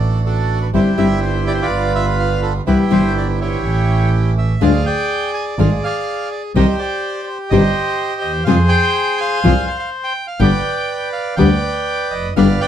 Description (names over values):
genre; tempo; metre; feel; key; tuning
tango; 124 BPM; 4/4; rubato; C major; A4 = 440 Hz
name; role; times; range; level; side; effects
bandoneon; melody; 0.0-12.7 s; D4 to Ab5; -19 LUFS; right 1 dB; none
bandoneon; stabs; 0.0-12.6 s; G3 to Ab4; -27 LUFS; right 6 dB; none
clear double bass; bass; 0.0-12.6 s; F1 to F2; -17 LUFS; right 1 dB; none
nylon-string guitar; accompaniment; 0.7-12.5 s; C3 to G4; -14 LUFS; left 4 dB; none
room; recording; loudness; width
moderate studio ambience, RT60 0.5 s; dark, warm production; -14 LUFS; side -10 dB against mid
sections
0.0-4.6 A section; 4.6-12.7 B section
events
none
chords
0.0 D; 0.7 C/G; 1.7 G7; 2.7 Cmaj7; 3.6 A7; 4.6 Ddim; 6.6 Cm; 8.5 Fm; 10.4 G